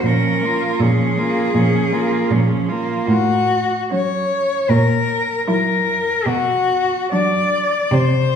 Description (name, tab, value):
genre	classical, lyrical piece for cello ensemble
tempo	67-80 BPM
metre	4/4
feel	rubato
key	Bb minor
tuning	A4 = 440 Hz
part	rich cello	melody	0.0-8.4 s	F#4 to D5	-19 LUFS	left 3 dB	none
part	rich cello	second line	0.0-7.7 s	Db4 to F4	-24 LUFS	right 7 dB	none
part	rich cello	accompaniment	0.0-7.7 s	F3 to Bb3	-22 LUFS	equal	none
part	rich cello	bass	0.0-8.4 s	A2 to B#2	-19 LUFS	right 1 dB	none
room	wet recital hall reverb, RT60 1.5 s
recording	heard from further back in the room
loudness	-15 LUFS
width	side -7 dB against mid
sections	0.0-8.4 A section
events	none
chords	0.1 Bbm; 3.1 F#m/A; 4.7 F#7/A#; 6.3 Bm